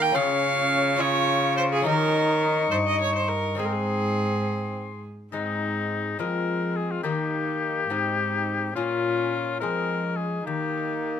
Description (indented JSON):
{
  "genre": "classical, renaissance-style consort dance",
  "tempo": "70 BPM (dotted quarters)",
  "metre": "6/8",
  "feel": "straight",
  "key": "Ab major",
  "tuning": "A4 = 440 Hz",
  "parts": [
    { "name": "warm oboe", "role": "melody", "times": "0.0-11.2 s", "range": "Eb4 to Db6", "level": "-29 LUFS", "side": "left 6 dB", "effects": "none" },
    { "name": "rich viola", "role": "second line", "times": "0.0-11.2 s", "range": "C4 to G5", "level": "-28 LUFS", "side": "right 5 dB", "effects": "none" },
    { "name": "lute", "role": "accompaniment", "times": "0.0-11.2 s", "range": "G2 to C5", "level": "-32 LUFS", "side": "left 6 dB", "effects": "none" },
    { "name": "mellow bassoon", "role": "accompaniment", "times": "0.0-11.2 s", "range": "Ab3 to F4", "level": "-30 LUFS", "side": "left 4 dB", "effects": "none" },
    { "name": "rich cello", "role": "bass", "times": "0.0-11.2 s", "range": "G2 to F3", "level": "-30 LUFS", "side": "right 1 dB", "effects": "none" }
  ],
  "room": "light reverb",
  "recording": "close, detailed microphones",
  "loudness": "-22 LUFS",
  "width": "side -8 dB against mid",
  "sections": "0.0-5.3 A section; 5.3-11.2 B section",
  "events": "none",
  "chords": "0.1 Db; 1.9 Eb7; 3.6 Ab; 6.2 Fm; 7.0 Eb; 7.9 Ab; 8.8 Bbm; 9.6 Fm; 10.5 Eb"
}